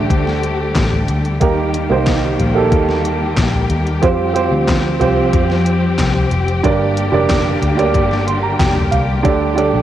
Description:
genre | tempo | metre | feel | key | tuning
piano-driven pop | 92 BPM | 4/4 | straight | G minor | A4 = 440 Hz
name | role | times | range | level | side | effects
dark baby grand piano | accompaniment | 0.0-9.8 s | G2 to C6 | -17 LUFS | right 5 dB | none
warm studio string section | sustained chords | 0.0-9.8 s | D3 to G4 | -20 LUFS | left 3 dB | none
vintage muted picked electric bass | bass | 0.0-9.8 s | F1 to F2 | -19 LUFS | left 2 dB | none
pop drum kit | drums | 0.1-9.7 s | handclaps, hi-hat, kick drum, snare drum, toms | -19 LUFS | left 1 dB | overdrive, cassette tape
room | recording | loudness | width
moderate lush hall reverb, RT60 3.0 s | home recording on cassette | -13 LUFS | side -12 dB against mid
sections
0.0-9.8 A section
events
grand piano fill 7.9-9.3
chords
0.0 Dsus4; 1.4 Eb; 4.0 Fsus2; 6.6 Gm; 9.3 Dsus4

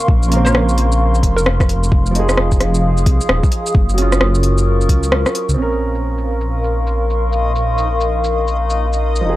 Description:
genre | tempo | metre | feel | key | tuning
future garage | 131 BPM | 4/4 | swing 62% on 16ths | Bb minor | A4 = 438 Hz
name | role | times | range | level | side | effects
felt-muted upright piano | accompaniment | 0.0-9.4 s | Db3 to Bb4 | -23 LUFS | right 4 dB | sidechain pumping, tape echo
warbly tape-like pad | sustained chords | 0.0-9.4 s | Ab4 to Eb6 | -21 LUFS | left 2 dB | chorus, built-in reverb, sidechain pumping
organic electronic drum kit | drums | 0.0-9.2 s | hi-hat, rim click, shaker | -19 LUFS | equal | overdrive, low-pass filter on perc, low-pass filter on hats, low-pass filter on snare
dark detuned saw bass | bass | 0.1-9.4 s | Eb1 to Db2 | -16 LUFS | equal | tube saturation, sidechain pumping
electronic kick drum | drums | 0.1-5.0 s | none | -14 LUFS | equal | overdrive
hollow square pluck | melody | 0.4-2.0 s | Bb4 to Db5 | -25 LUFS | equal | chorus, analog delay
backwards swelling texture | texture | 6.6-9.4 s | Eb4 to Eb5 | -29 LUFS | left 2 dB | built-in reverb
room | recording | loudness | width
little or no reverb | dry, gritty hardware recording, transformer saturation | -13 LUFS | side -16 dB against mid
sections
0.0-5.6 A section; 5.6-9.4 B section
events
kick drops out 5.1-5.6; filter sweep on drum 5.6-9.4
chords
0.0 Bbmadd9; 1.9 Fm7; 3.8 Ebm7/Gb; 5.6 Bbmadd9

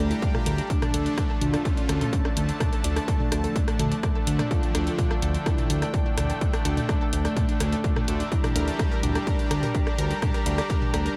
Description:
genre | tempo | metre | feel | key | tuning
melodic techno | 126 BPM | 4/4 | straight | D minor | A4 = 440 Hz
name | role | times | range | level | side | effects
soft octave-layered synth lead | melody | 0.0-11.2 s | A3 to F4 | -35 LUFS | equal | chorus, phaser, sidechain pumping, tape echo
clear symphonic string section | sustained chords | 0.0-11.2 s | F3 to Bb5 | -41 LUFS | equal | sidechain pumping
unison pluck | arpeggios | 0.0-11.2 s | A3 to F5 | -37 LUFS | equal | sidechain pumping, tape echo
brassy analog pad | stabs | 0.0-11.2 s | D3 to G4 | -34 LUFS | equal | chorus, sidechain pumping, analog delay
fat analog bass | bass | 0.0-11.1 s | D2 | -28 LUFS | equal | sidechain pumping
overtone-sweeping drone | drone | 0.1-11.2 s | D3 to A3 | -45 LUFS | equal | none
techno drum kit | drums | 0.1-11.2 s | hi-hat, rim click, toms | -34 LUFS | equal | overdrive, analog delay
electronic kick drum | drums | 0.2-10.8 s | none | -28 LUFS | equal | none
room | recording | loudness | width
light reverb | echo-heavy mix | -25 LUFS | mono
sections
0.0-11.2 A section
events
none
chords
0.0 Gm/D; 0.7 Dm; 8.3 Gm/D

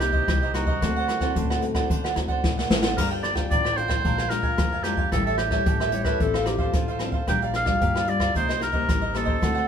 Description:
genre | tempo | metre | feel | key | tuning
samba and choro | 112 BPM | 4/4 | straight | G minor | A4 = 440 Hz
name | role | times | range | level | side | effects
clear oboe | melody | 0.0-9.7 s | F#4 to G5 | -26 LUFS | right 1 dB | none
cavaquinho | accompaniment | 0.0-9.7 s | D4 to Ab5 | -29 LUFS | right 4 dB | none
nylon-string guitar | accompaniment | 0.0-9.7 s | A2 to Bb4 | -31 LUFS | left 4 dB | none
upright bass | bass | 0.0-9.7 s | G1 to D3 | -29 LUFS | equal | none
jazz brush drum kit | drums | 0.0-9.7 s | crash cymbal, hi-hat, kick drum, rim click, snare drum | -26 LUFS | equal | none
warm clarinet | second line | 5.9-7.1 s | F4 to C#5 | -28 LUFS | left 5 dB | none
room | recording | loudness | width
moderate studio reverb, RT60 0.7 s | band playing live in one room | -21 LUFS | side -8 dB against mid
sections
0.0-3.0 A section; 3.0-9.7 A section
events
drum fill 2.4-3.0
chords
0.0 Cm7; 0.8 D7; 3.0 Gm7; 4.0 Bb7; 5.1 A7; 6.2 Dm7/A; 7.3 Gm7/Bb; 8.4 Cm7

